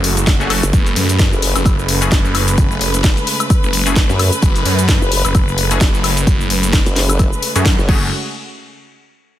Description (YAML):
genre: bass house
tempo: 130 BPM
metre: 4/4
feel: swing 57% on 16ths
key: F# minor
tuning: A4 = 442 Hz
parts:
  - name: clear studio string section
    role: sustained chords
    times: 0.0-8.1 s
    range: C#3 to B4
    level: -22 LUFS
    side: equal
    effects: sidechain pumping
  - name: phased detuned saw bass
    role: bass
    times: 0.0-8.1 s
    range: F#1 to F#2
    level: -17 LUFS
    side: equal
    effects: phaser, tube saturation, sidechain pumping
  - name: dusty soul sampler-style drum kit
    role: drums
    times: 0.0-7.9 s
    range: hi-hat, snare drum, tambourine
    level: -27 LUFS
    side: left 2 dB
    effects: none
  - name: house drum kit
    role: drums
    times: 0.0-8.0 s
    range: crash cymbal, hi-hat, shaker, snare drum, woodblock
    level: -20 LUFS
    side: left 2 dB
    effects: overdrive, studio reverb
  - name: electronic kick drum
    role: drums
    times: 0.3-8.0 s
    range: none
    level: -14 LUFS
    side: equal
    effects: overdrive, studio reverb
  - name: band-passed chord stab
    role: stabs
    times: 0.4-8.1 s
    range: A3 to A4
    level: -24 LUFS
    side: left 4 dB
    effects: chorus, sidechain pumping, digital delay
  - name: formant-sweep wobble bass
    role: bass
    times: 0.6-7.9 s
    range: F#1 to F#2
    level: -16 LUFS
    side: equal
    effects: chorus, tube saturation, sidechain pumping
room: little or no reverb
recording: dense, heavily limited modern master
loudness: -12 LUFS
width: side -12 dB against mid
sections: 0.0-8.1 A section; 8.1-9.4 B section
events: drop 0.0-8.1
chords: 0.0 F#madd9; 8.1 N.C.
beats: 0.27 | 0.73 1.19 1.66 2.12 | 2.58 3.04 3.50 3.96 | 4.42 4.89 5.35 5.81 | 6.27 6.73 7.19 7.66